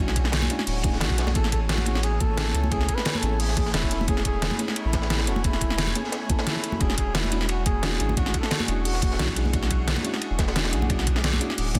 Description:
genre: liquid drum and bass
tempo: 176 BPM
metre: 4/4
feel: straight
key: A major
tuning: A4 = 440 Hz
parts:
  - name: mellow FM electric piano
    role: accompaniment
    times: 0.0-11.8 s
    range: G#3 to A4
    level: -35 LUFS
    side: equal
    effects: chorus, tape echo
  - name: shimmering ambient pad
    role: sustained chords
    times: 0.0-11.8 s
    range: A3 to D6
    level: -39 LUFS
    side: equal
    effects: chorus, built-in reverb
  - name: warm sub bass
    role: bass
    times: 0.0-11.8 s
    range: D1 to C#2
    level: -29 LUFS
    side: equal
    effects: none
  - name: crunchy breakbeat drum kit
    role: drums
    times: 0.1-11.8 s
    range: hi-hat, ride cymbal, snare drum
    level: -36 LUFS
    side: equal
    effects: high-pass filter on cymbals, high-pass filter on hats, high-pass filter on snare, high-pass filter on room
  - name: pop drum kit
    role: drums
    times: 0.1-11.8 s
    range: hi-hat, snare drum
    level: -30 LUFS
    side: equal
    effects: overdrive
  - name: electronic kick drum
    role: drums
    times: 0.2-11.8 s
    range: none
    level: -28 LUFS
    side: equal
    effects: overdrive
  - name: congas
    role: percussion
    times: 0.4-11.8 s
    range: none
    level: -36 LUFS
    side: equal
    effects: none
  - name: mellow flugelhorn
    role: melody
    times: 1.0-9.3 s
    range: E4 to B4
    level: -34 LUFS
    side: equal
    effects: tape echo
room: light reverb, studio reverb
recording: dense, heavily limited modern master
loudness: -24 LUFS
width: mono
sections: 0.0-11.8 A section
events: none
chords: 0.0 E13; 1.4 Amaj9; 6.8 E13

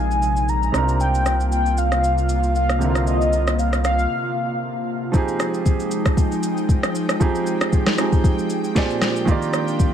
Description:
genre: amapiano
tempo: 116 BPM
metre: 4/4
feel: swing 55% on 16ths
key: F dorian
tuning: A4 = 441 Hz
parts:
  - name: warm velvety synth lead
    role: melody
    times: 0.0-4.6 s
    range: Eb5 to Bb5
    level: -23 LUFS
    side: equal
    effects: chorus, digital delay
  - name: warm grand piano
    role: accompaniment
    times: 0.0-9.9 s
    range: Bb2 to D5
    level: -25 LUFS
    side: right 4 dB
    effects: none
  - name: airy breathy pad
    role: sustained chords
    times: 0.0-9.9 s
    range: C3 to G5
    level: -26 LUFS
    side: equal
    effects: chorus, sidechain pumping
  - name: warm sub bass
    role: bass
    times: 0.0-4.1 s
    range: Bb1 to C2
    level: -21 LUFS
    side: left 1 dB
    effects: none
  - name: smooth R&B drum kit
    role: drums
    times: 0.1-9.9 s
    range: kick drum, rim click, shaker, snare drum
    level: -20 LUFS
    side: equal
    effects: vintage 12-bit sampler grit
room: digital ambience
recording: none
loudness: -18 LUFS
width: side -9 dB against mid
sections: 0.0-5.1 A section; 5.1-9.9 B section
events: break 4.1-5.1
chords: 0.0 Bb9sus4; 0.7 C7sus4; 5.1 Fm9; 8.8 Bb13; 9.3 Ebmaj9

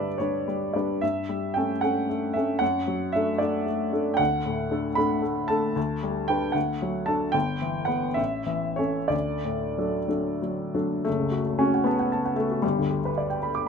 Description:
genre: classical, romantic character piece for solo piano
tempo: 59-83 BPM (dotted quarters)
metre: 6/8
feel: rubato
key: D major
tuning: A4 = 442 Hz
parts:
  - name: warm upright piano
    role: solo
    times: 0.0-13.7 s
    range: F#1 to D6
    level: -24 LUFS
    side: equal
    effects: none
room: light reverb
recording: close, detailed microphones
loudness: -24 LUFS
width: side -6 dB against mid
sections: 0.0-11.1 A section; 11.1-13.7 B section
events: none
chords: 0.0 G; 1.0 A7/G; 2.6 D/F#; 4.2 D; 5.8 G/D; 6.6 D; 7.3 Em/G; 8.2 A; 9.1 D; 11.1 F#m; 12.6 G

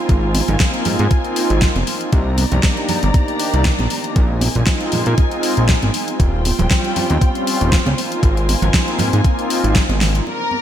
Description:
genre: nu-disco, nu disco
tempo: 118 BPM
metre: 4/4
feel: swing 54% on 16ths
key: unclear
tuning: A4 = 440 Hz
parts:
  - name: warm analog pad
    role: accompaniment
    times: 0.0-10.4 s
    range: C3 to G4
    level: -22 LUFS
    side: equal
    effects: chorus, cassette tape, sidechain pumping, ping-pong delay
  - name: dark studio string section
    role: sustained chords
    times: 0.0-10.6 s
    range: Eb3 to Bb5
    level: -25 LUFS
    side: left 1 dB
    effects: sidechain pumping, low-pass filter
  - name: fat analog bass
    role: bass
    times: 0.1-10.2 s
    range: Eb1 to Bb2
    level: -17 LUFS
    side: equal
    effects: sidechain pumping
  - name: electronic kick drum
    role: drums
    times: 0.1-9.9 s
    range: none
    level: -16 LUFS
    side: equal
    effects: overdrive, studio ambience
  - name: pop drum kit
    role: drums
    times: 0.1-10.2 s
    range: hi-hat, snare drum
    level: -22 LUFS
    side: left 1 dB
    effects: studio ambience, gated reverb
  - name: congas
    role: percussion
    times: 0.3-10.6 s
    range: none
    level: -26 LUFS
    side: right 4 dB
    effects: none
  - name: warm symphonic violin section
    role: melody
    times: 10.3-10.6 s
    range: Bb4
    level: -20 LUFS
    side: left 3 dB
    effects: none
room: moderate lush hall reverb, RT60 1.8 s, small room reverb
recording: bright 1980s-style digital production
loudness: -14 LUFS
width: side -10 dB against mid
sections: 0.0-10.3 A section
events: drum fill 10.0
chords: 0.0 Ab69; 2.1 Cm9; 4.2 Bb9sus4; 6.2 Eb13; 8.0 Ab69

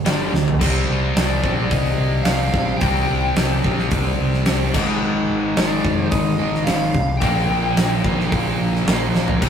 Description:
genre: hard rock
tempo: 109 BPM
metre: 4/4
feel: straight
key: C minor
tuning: A4 = 440 Hz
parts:
  - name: cranked stack guitar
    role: riff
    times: 0.0-9.5 s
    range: G2 to C4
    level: -24 LUFS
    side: left 4 dB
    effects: overdrive
  - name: sludgy distorted guitar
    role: riff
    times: 0.0-9.5 s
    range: G2 to C4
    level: -23 LUFS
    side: right 4 dB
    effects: overdrive
  - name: overdriven picked electric bass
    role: bass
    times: 0.0-9.5 s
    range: F1 to D2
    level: -24 LUFS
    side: equal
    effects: none
  - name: huge arena drum kit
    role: drums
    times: 0.1-9.5 s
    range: crash cymbal, hi-hat, kick drum, snare drum, toms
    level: -21 LUFS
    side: equal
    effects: none
  - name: lead guitar through a small cranked amp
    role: melody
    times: 1.2-8.0 s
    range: D5 to G5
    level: -26 LUFS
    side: left 2 dB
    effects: overdrive, analog delay
room: moderate studio reverb, RT60 0.6 s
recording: rough rehearsal-room recording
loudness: -16 LUFS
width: side -8 dB against mid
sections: 0.6-9.5 A section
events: drum fill 0.3, 9.2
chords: 0.0 G5; 0.6 C5; 4.7 Ab5; 7.2 Bb5

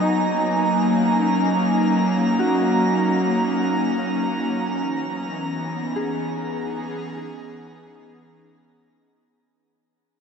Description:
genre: ambient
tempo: 50 BPM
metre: 4/4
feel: straight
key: unclear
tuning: A4 = 439 Hz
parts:
  - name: airy breathy pad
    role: sustained chords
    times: 0.0-9.6 s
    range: E3 to A#5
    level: -20 LUFS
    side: equal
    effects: chorus
  - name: Celtic harp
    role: arpeggios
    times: 0.0-8.2 s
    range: C#4 to G#4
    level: -29 LUFS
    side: left 2 dB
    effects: ping-pong delay
  - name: drifting glass-harmonics texture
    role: texture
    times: 0.0-9.6 s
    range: A#5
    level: -31 LUFS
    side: right 3 dB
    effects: chorus, built-in reverb
room: wet shimmer reverb, RT60 7.4 s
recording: none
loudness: -19 LUFS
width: side -6 dB against mid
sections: 0.0-9.6 A section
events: fade-in on harp 0.0-9.6; fade-in on synth texture 0.0-9.6; fade-out 3.2-9.6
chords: 0.0 D#m7; 4.8 C#m9

